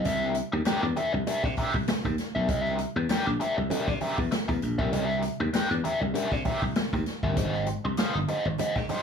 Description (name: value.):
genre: funk.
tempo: 98 BPM.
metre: 4/4.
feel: swing 56% on 16ths.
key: C mixolydian.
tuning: A4 = 440 Hz.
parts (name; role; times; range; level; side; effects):
biting overdriven guitar; accompaniment; 0.0-9.0 s; D4 to G5; -29 LUFS; left 2 dB; wah, harmonic tremolo.
congas; percussion; 0.0-9.0 s; none; -37 LUFS; right 12 dB; none.
tambourine; percussion; 0.0-9.0 s; none; -52 LUFS; equal; none.
slap bass; bass; 0.1-8.9 s; G1 to C3; -29 LUFS; equal; none.
swinging big-band drum kit; drums; 0.1-9.0 s; hi-hat, kick drum, snare drum; -30 LUFS; equal; none.
room: light reverb.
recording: small room reverb.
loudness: -25 LUFS.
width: side -6 dB against mid.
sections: 0.0-9.0 A section.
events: none.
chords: 0.0 C9; 7.4 Abmaj7.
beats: | 0.05 0.66 1.27 1.88 | 2.49 3.10 3.71 4.32 | 4.93 5.54 6.15 6.76 | 7.37 7.98 8.59.